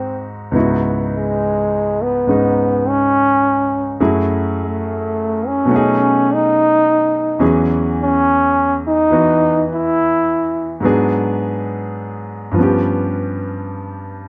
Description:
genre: jazz ballad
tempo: 70 BPM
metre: 4/4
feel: swing 66% on 8ths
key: C# minor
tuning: A4 = 440 Hz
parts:
  - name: bright trombone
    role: melody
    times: 0.0-10.8 s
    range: G#3 to E4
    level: -17 LUFS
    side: equal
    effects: none
  - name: clear grand piano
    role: accompaniment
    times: 0.0-14.3 s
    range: C#2 to G#4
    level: -20 LUFS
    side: equal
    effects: none
room: light reverb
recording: none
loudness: -16 LUFS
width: mono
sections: 0.6-14.3 A section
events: trombone solo 0.6-14.3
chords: 0.0 G#7; 0.6 C#m11; 4.0 F#m9; 5.7 B13; 7.4 E69; 10.8 G#m7b5; 12.6 G7#11

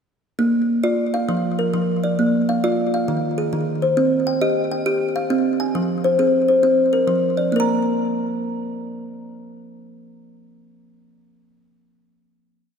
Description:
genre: southern african traditional, mbira-style interlocking cycle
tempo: 135 BPM (dotted quarters)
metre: 12/8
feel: straight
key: Bb mixolydian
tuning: A4 = 440 Hz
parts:
  - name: kalimba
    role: solo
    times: 0.4-10.8 s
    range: Eb3 to Bb5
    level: -18 LUFS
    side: equal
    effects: ping-pong delay
room: wet church reverb, RT60 3.2 s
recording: dreamy mix soaked in reverb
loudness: -17 LUFS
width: side -6 dB against mid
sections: 0.4-7.5 A section; 7.5-11.1 final note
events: none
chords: 0.4 Bb; 1.3 Fsus4; 2.2 Bb; 3.1 Ebsus24; 4.0 Cm; 5.7 Fm; 7.5 N.C.

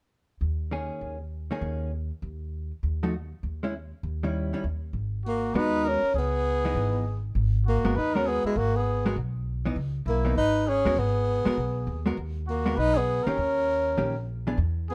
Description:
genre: jazz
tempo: 199 BPM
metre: 4/4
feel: swing 62% on 8ths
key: G# minor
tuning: A4 = 439 Hz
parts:
  - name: upright bass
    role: bass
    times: 0.4-14.9 s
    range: G1 to E2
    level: -31 LUFS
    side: equal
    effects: none
  - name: vintage hollow-body jazz guitar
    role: accompaniment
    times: 0.7-14.6 s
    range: D#3 to A#4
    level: -32 LUFS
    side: equal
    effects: none
  - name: breathy trumpet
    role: second line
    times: 5.2-14.9 s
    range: E4 to B4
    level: -35 LUFS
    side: equal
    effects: none
  - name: breathy tenor saxophone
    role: melody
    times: 5.3-14.9 s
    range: G#3 to D#4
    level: -28 LUFS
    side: equal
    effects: none
room: little or no reverb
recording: none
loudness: -27 LUFS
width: mono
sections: 0.1-4.9 A section; 4.9-14.9 B section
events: none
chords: 0.1 D#7sus4; 2.5 D#dim; 3.1 C#madd9/D#; 3.7 D#7b9; 4.9 G#m9; 6.2 C#m9; 7.4 G#m9; 9.8 C#m9; 11.0 G#m9; 13.4 D#7

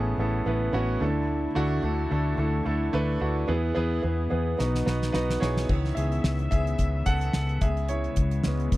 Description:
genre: piano-driven pop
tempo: 109 BPM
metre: 4/4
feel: swing 56% on 16ths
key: unclear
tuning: A4 = 439 Hz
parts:
  - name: clear concert grand piano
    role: accompaniment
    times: 0.0-8.8 s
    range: A2 to F#5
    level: -28 LUFS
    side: right 2 dB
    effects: none
  - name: warm studio string section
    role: sustained chords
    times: 0.0-8.8 s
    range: C#3 to E5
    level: -35 LUFS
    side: left 5 dB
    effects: none
  - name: vintage muted fingered electric bass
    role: bass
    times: 0.0-8.8 s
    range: A1 to E2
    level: -27 LUFS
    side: left 1 dB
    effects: none
  - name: damped 70s drum kit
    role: drums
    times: 4.6-8.8 s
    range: crash cymbal, hi-hat, kick drum, snare drum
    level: -27 LUFS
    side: equal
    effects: none
room: little or no reverb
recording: dry, close 1970s-style studio recording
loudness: -24 LUFS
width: side -17 dB against mid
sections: 0.0-5.7 A section; 5.7-8.8 B section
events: drum fill 4.6-5.7; grand piano solo 5.7-8.8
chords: 0.0 Aadd9; 1.0 Dsus2; 3.5 E; 4.6 B; 5.7 C#m7

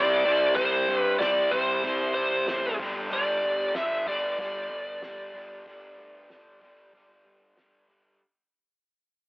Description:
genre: classic rock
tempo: 94 BPM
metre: 4/4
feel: straight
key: unclear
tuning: A4 = 441 Hz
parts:
  - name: biting lead guitar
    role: melody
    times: 0.0-7.5 s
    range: C5 to E5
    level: -26 LUFS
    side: equal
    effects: overdrive
  - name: crunchy overdriven guitar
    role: riff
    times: 0.0-8.2 s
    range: G2 to C4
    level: -33 LUFS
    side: left 1 dB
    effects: none
  - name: raw garage guitar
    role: riff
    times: 0.0-8.2 s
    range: G2 to C4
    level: -33 LUFS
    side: right 1 dB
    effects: overdrive
  - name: fuzz picked electric bass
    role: bass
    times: 0.0-8.2 s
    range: G1 to G2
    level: -36 LUFS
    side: equal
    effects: overdrive
  - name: cloth-damped thuddy drum kit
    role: drums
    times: 0.6-7.7 s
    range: hi-hat, kick drum, snare drum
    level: -37 LUFS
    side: equal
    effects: none
room: light reverb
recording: rough rehearsal-room recording, warm saturation, telephone sound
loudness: -23 LUFS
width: side -28 dB against mid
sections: 0.0-8.2 A section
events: fade-out 0.0-8.2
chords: 0.0 C5; 2.8 G5

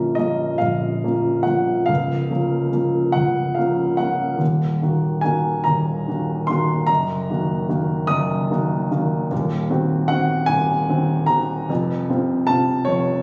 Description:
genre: classical, romantic nocturne for solo piano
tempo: 47-51 BPM (dotted quarters)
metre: 12/8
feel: rubato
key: Bb minor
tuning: A4 = 440 Hz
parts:
  - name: warm grand piano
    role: solo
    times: 0.0-13.2 s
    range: Bb0 to Eb6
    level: -20 LUFS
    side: equal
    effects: none
room: moderate recital hall reverb, RT60 1.5 s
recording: recorded on a phone in the room, studio reverb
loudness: -21 LUFS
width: mono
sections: 0.0-13.2 A section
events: none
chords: 0.0 Bbm; 1.9 Bbm/Db; 4.4 Ebm; 6.9 Ebm/Gb; 9.3 Cdim/Eb; 11.7 F5

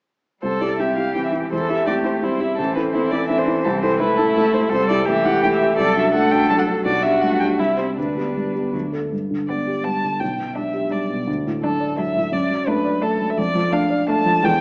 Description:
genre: quick classical-period movement for piano quartet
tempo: 168 BPM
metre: 3/4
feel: rubato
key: C major, G major from 4.7 s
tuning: A4 = 440 Hz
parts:
  - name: muted violin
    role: melody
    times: 0.4-14.6 s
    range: A4 to A5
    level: -25 LUFS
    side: equal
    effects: none
  - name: muted cello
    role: second line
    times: 0.4-14.3 s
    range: E3 to A3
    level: -32 LUFS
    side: equal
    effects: none
  - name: muted violin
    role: second line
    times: 0.4-14.4 s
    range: B3 to A4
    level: -28 LUFS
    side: equal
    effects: none
  - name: dark baby grand piano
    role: accompaniment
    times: 0.4-14.6 s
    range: A1 to D5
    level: -23 LUFS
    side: equal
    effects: none
room: moderate recital hall reverb, RT60 1.4 s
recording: small speaker sound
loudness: -20 LUFS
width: mono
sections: 0.4-9.1 A section; 9.1-14.6 B section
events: none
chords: 0.4 C; 1.5 C/E; 2.6 Am; 3.6 Am/C; 4.7 Am7/C; 5.8 D7/C; 6.9 G/B; 7.6 C; 8.0 G/D; 8.7 D5; 9.1 G; 10.2 G/B; 11.3 D; 12.3 D/F#; 13.4 Dm/F

